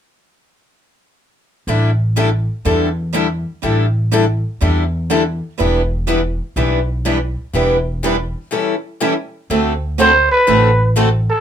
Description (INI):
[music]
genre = acoustic string swing (jazz manouche)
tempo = 123 BPM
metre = 4/4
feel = swing 64% on 8ths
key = unclear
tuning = A4 = 442 Hz
[part]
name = picked steel-string acoustic guitar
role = accompaniment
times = 1.7-11.1 s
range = D3 to A4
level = -19 LUFS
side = left 6 dB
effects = none
[part]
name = picked steel-string acoustic guitar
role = accompaniment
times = 1.7-11.1 s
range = D3 to B4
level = -21 LUFS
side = right 7 dB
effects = none
[part]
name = upright bass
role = bass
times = 1.7-11.3 s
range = E1 to E2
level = -18 LUFS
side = equal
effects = none
[part]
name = growling trumpet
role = melody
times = 10.0-11.4 s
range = A4 to C5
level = -11 LUFS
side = right 1 dB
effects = none
[sound]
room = moderate club reverb, RT60 0.6 s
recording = minimal, uncompressed stereo recording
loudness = -14 LUFS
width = side -9 dB against mid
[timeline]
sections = 1.7-9.5 A section; 9.5-11.4 B section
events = break 8.5-9.5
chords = 1.7 A7sus4; 5.6 Em7; 8.5 A7; 9.5 D7